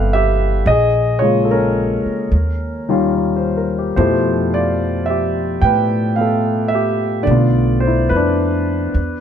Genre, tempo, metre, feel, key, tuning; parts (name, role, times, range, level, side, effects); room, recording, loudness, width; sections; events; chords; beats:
jazz ballad; 72 BPM; 4/4; swing 68% on 8ths; A4 = 439 Hz
warm grand piano; accompaniment; 0.0-9.2 s; B2 to G5; -16 LUFS; left 1 dB
upright bass; bass; 0.0-9.2 s; G1 to A2; -19 LUFS; equal
little or no reverb; -14 LUFS; side -8 dB against mid
0.0-9.2 A section
0.0 Cmaj9; 0.7 Bbm7; 2.3 Eb9; 4.0 Fmaj9#11; 7.3 Bm7b5
| 0.65 1.48 2.31 3.14 | 3.96 4.79 5.62 6.45 | 7.27 8.10 8.93